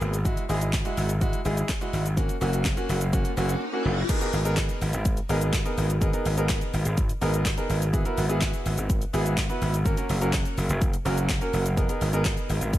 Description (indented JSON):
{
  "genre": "dance-pop",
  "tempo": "125 BPM",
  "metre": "4/4",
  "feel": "straight",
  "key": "G# minor",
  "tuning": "A4 = 435 Hz",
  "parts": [
    { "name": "clear concert grand piano", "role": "accompaniment", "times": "0.0-12.7 s", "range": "G#3 to B4", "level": "-29 LUFS", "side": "right 1 dB", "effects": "sidechain pumping" },
    { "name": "gritty slap bass", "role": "bass", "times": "0.0-12.8 s", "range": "F#1 to G#1", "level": "-26 LUFS", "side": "equal", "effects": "overdrive, sidechain pumping" },
    { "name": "deep house drum kit", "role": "drums", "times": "0.0-12.8 s", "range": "crash cymbal, handclaps, hi-hat, kick drum, shaker, snare drum", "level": "-27 LUFS", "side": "equal", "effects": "none" },
    { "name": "riser", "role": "sound effects", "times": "3.1-4.1 s", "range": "none", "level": "-34 LUFS", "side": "left 2 dB", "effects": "none" },
    { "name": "group handclap", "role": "percussion", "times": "4.6-12.4 s", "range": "none", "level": "-41 LUFS", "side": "left 4 dB", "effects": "none" }
  ],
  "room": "little or no reverb",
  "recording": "none",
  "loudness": "-23 LUFS",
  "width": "side -14 dB against mid",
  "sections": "0.0-4.1 A section; 4.1-12.8 B section",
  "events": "riser 3.1-4.1; silent gap 3.6-4.1",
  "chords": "0.3 Eadd9/G#; 2.2 F#; 4.1 G#madd9; 7.9 Eadd9/G#; 9.9 F#; 11.8 G#madd9"
}